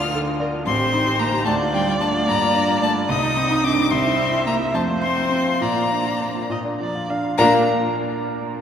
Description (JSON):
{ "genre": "quick classical-period movement for piano quartet", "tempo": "67-76 BPM (dotted quarters)", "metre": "6/8", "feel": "rubato", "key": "Bb major", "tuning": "A4 = 441 Hz", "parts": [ { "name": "rich violin", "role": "melody", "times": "0.0-7.7 s", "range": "G5 to F6", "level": "-23 LUFS", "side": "left 5 dB", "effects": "none" }, { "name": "rich cello", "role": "second line", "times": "0.0-7.7 s", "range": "G3 to F4", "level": "-26 LUFS", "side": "right 3 dB", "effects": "none" }, { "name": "clear grand piano", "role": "accompaniment", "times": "0.0-8.6 s", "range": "A1 to F5", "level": "-22 LUFS", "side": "equal", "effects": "none" }, { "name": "clear viola", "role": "accompaniment", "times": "0.1-7.7 s", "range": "D4 to F5", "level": "-25 LUFS", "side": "right 1 dB", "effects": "none" } ], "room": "wet cathedral reverb, RT60 5.0 s", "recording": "recorded in a church or concert hall", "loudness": "-18 LUFS", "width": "side -8 dB against mid", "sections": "0.0-7.4 A section; 7.4-8.6 B section", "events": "none", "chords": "0.0 Bb/D (rootless); 0.7 Am7b5; 1.5 Dm; 2.3 Gm7; 3.1 Cm; 3.9 C; 4.7 F5; 5.6 Bb", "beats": "| 0.67 1.47 | 2.29 3.10 | 3.92 4.75 | 5.62 6.51 | 7.39 8.24" }